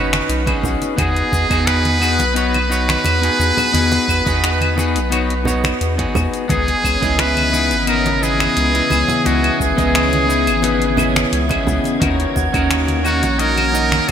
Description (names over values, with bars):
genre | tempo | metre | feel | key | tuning
sunset chillout | 87 BPM | 4/4 | straight | C# dorian | A4 = 440 Hz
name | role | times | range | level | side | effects
trumpet with metal mute | melody | 0.0-14.1 s | F#4 to B4 | -19 LUFS | right 1 dB | digital delay, shimmer reverb
clean electric guitar | accompaniment | 0.0-14.1 s | B3 to D#5 | -21 LUFS | moving between left 6 dB and right 5 dB | auto-pan, ping-pong delay, shimmer reverb
concert harp | arpeggios | 0.0-14.1 s | A#3 to F#4 | -25 LUFS | left 5 dB | ping-pong delay, shimmer reverb
round analog bass | bass | 0.0-14.1 s | F#1 to E2 | -20 LUFS | equal | none
deep house drum kit | drums | 0.1-14.1 s | cabasa, claves, finger snaps, hi-hat | -23 LUFS | left 2 dB | overdrive, gated reverb
congas | percussion | 0.1-14.1 s | none | -26 LUFS | right 2 dB | none
electronic kick drum | drums | 0.5-12.7 s | none | -25 LUFS | equal | none
airy breathy pad | sustained chords | 6.8-14.1 s | C#3 to D#5 | -24 LUFS | equal | chorus, shimmer reverb
wind-like tuned noise texture | texture | 7.5-14.1 s | G#6 | -30 LUFS | right 2 dB | built-in reverb, wide subtle chorus, shimmer reverb
room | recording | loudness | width
moderate lush hall reverb, RT60 2.6 s | bright 1980s-style digital production | -14 LUFS | side -8 dB against mid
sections
0.0-14.1 A section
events
none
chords
0.0 B6; 1.0 Emaj7; 6.5 C#m9; 12.0 D#m7